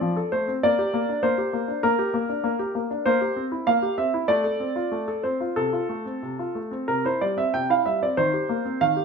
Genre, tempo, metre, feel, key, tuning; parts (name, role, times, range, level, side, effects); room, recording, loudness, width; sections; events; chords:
classical-period piano sonatina; 90-100 BPM; 4/4; rubato; F major; A4 = 440 Hz
clear grand piano; solo; 0.0-9.0 s; C3 to G5; -22 LUFS; equal
moderate large studio reverb, RT60 1.3 s; minimal, uncompressed stereo recording; -22 LUFS; side -5 dB against mid
0.0-9.0 A section
0.0 F; 0.6 Gm/Bb; 3.1 C7/Bb; 4.3 F/A; 5.6 F/C; 6.9 C; 8.2 Cm7/Eb